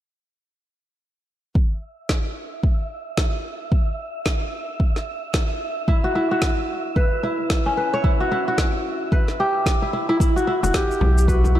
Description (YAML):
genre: organic downtempo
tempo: 111 BPM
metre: 4/4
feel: swing 60% on 16ths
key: unclear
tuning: A4 = 440 Hz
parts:
  - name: electronic kick drum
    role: drums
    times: 1.6-11.4 s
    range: none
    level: -20 LUFS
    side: equal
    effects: none
  - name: wind-like tuned noise texture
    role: texture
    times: 2.3-11.6 s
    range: E5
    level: -32 LUFS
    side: right 2 dB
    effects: built-in reverb
  - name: electronic snare drum and shaker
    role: drums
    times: 2.1-11.5 s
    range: none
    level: -29 LUFS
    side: equal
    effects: none
  - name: kora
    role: arpeggios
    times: 5.9-11.6 s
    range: C#4 to C#5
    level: -22 LUFS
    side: equal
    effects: tape echo
  - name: warm sub bass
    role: bass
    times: 10.6-11.6 s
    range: E1 to B1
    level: -17 LUFS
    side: equal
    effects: none
  - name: frame drum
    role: percussion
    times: 10.6-11.5 s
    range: none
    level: -28 LUFS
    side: left 3 dB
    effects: none
  - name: warm duduk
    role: melody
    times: 10.8-11.6 s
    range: F#4 to G4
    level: -24 LUFS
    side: left 1 dB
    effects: none
room: moderate lush hall reverb, RT60 2.1 s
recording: dark, warm production, lossy compression artefacts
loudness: -19 LUFS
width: side -12 dB against mid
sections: 1.6-10.2 A section; 10.2-11.6 B section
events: none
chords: 1.6 N.C.; 5.9 C#m7b5; 10.2 Emadd9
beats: | 1.55 2.09 2.63 3.17 | 3.72 4.26 4.80 5.34 | 5.88 6.42 6.96 7.50 | 8.04 8.58 9.12 9.66 | 10.20 10.74 11.28